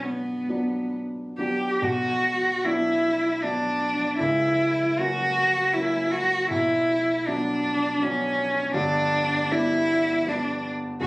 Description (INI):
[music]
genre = classical, romantic duo for cello and grand piano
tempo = 78 BPM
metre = 3/4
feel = uneven beats, rubato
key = B minor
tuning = A4 = 440 Hz
[part]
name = warm cello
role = melody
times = 0.0-11.1 s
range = B3 to G4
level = -22 LUFS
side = equal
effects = none
[part]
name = warm concert grand piano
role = accompaniment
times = 0.0-11.1 s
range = F#1 to D4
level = -29 LUFS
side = equal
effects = none
[sound]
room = light reverb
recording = recorded on a phone in the room, studio reverb, compression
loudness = -21 LUFS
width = side -22 dB against mid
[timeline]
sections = 0.0-1.8 A section; 1.8-11.1 B section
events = none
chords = 0.0 Bm; 4.2 F#7/C#; 6.5 Bm; 8.7 G